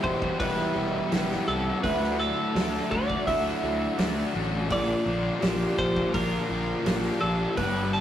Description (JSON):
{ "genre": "rock, shoegaze and dream pop", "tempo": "84 BPM", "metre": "4/4", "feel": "straight", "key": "unclear", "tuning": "A4 = 436 Hz", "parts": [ { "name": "twelve-string electric guitar", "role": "melody", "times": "0.0-8.0 s", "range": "A4 to E5", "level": "-30 LUFS", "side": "equal", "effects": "none" }, { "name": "evolving wavetable pad", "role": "sustained chords", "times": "0.3-8.0 s", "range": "Bb3 to D6", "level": "-39 LUFS", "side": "right 1 dB", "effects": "none" }, { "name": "fingerpicked twelve-string acoustic guitar", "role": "arpeggios", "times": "0.0-8.0 s", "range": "E4 to G4", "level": "-34 LUFS", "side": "right 2 dB", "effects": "none" }, { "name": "overdriven electric guitar", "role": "riff", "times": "0.0-8.0 s", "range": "E2 to G4", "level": "-30 LUFS", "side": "left 4 dB", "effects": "none" }, { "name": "overdriven electric guitar", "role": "riff", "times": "0.0-8.0 s", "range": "G2 to E4", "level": "-33 LUFS", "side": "right 3 dB", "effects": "none" }, { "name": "fuzz fingered electric bass", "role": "bass", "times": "0.0-8.0 s", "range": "E1 to D2", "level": "-31 LUFS", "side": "equal", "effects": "overdrive" }, { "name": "loose indie drum kit", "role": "drums", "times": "0.0-7.7 s", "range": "hi-hat, kick drum, snare drum", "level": "-32 LUFS", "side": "right 1 dB", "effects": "none" } ], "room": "moderate small room reverb, RT60 0.6 s", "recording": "rough rehearsal-room recording, tube saturation", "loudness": "-24 LUFS", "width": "side -10 dB against mid", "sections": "0.0-8.0 A section", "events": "none", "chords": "0.0 Emadd9; 1.8 Dadd9; 4.7 Bb", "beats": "0.39 1.11 | 1.83 2.55 3.27 3.98 | 4.70 5.42 6.14 6.85 | 7.57" }